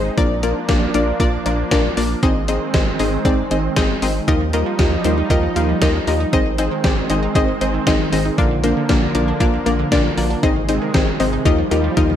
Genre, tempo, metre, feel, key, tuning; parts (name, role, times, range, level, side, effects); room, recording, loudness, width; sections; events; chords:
synth-pop; 117 BPM; 4/4; straight; A4 = 442 Hz
analog pluck; accompaniment; 0.0-12.2 s; Ab3 to F5; -19 LUFS; left 4 dB; chorus
lush unison pad; sustained chords; 0.0-12.2 s; C3 to Eb4; -24 LUFS; right 2 dB; chorus
rubbery square bass; bass; 0.0-12.2 s; Ab1 to Eb2; -22 LUFS; right 1 dB
gated 80s digital drum machine; drums; 0.2-12.2 s; hi-hat, kick drum, snare drum, toms; -20 LUFS; right 1 dB; gated reverb, gated reverb snare
analog pluck; arpeggios; 4.3-12.2 s; D3 to Eb4; -26 LUFS; right 6 dB; chorus, phaser, analog delay
light reverb; dark, warm production; -15 LUFS; side -10 dB against mid
0.0-12.2 A section
drum fill 12.0
0.2 Bb; 2.2 Ab; 4.3 Ebadd9; 6.3 Ab; 8.4 Bb; 10.4 Ab; 11.5 Ebadd9